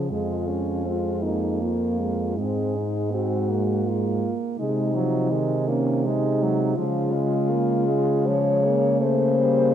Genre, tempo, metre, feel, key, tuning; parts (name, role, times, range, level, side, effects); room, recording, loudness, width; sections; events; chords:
classical, lyrical piece for horn quartet; 81 BPM; 3/4; rubato; A4 = 441 Hz
mellow French horn; melody; 0.0-9.7 s; C4 to Db5; -25 LUFS; left 4 dB
clear French horn; second line; 0.0-9.7 s; F3 to Db4; -28 LUFS; right 8 dB
dark French horn; accompaniment; 0.0-9.7 s; Eb3 to Bb3; -28 LUFS; equal
warm French horn; bass; 0.0-9.7 s; F2 to Db3; -26 LUFS; right 2 dB
light reverb; dark, warm production; -21 LUFS; side -9 dB against mid
0.0-9.7 A section
0.1 Fmadd11; 2.4 Ab13; 4.6 Ab/C; 6.8 Db; 9.0 Bbm69/Db